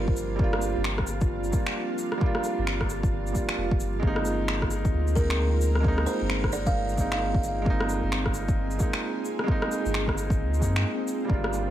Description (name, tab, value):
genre	future garage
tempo	132 BPM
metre	4/4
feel	swing 61% on 16ths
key	unclear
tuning	A4 = 440 Hz
part	buzzing kalimba	melody	0.0-0.1, 5.2-7.4 s	Bb4 to F5	-34 LUFS	right 2 dB	ping-pong delay
part	felt-muted upright piano	accompaniment	0.0-11.7 s	G3 to F4	-31 LUFS	right 1 dB	sidechain pumping, ping-pong delay
part	ethereal airy pad	sustained chords	0.0-11.7 s	F3 to Bb4	-34 LUFS	right 1 dB	ensemble chorus, built-in reverb, sidechain pumping
part	soft dub sub bass	bass	0.0-11.7 s	F1 to G2	-28 LUFS	equal	tube saturation, sidechain pumping
part	electronic kick drum	drums	0.1-11.4 s	none	-26 LUFS	equal	overdrive
part	electronic shaker, rim click and finger snaps	drums	0.2-11.6 s	none	-32 LUFS	left 1 dB	overdrive
part	flickering grainy texture	texture	11.7 s	none	barely audible	none	none
room	little or no reverb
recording	vinyl crackle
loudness	-24 LUFS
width	side -12 dB against mid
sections	0.0-11.3 A section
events	break 10.8-11.3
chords	0.0 Gm7; 4.0 Abadd9/G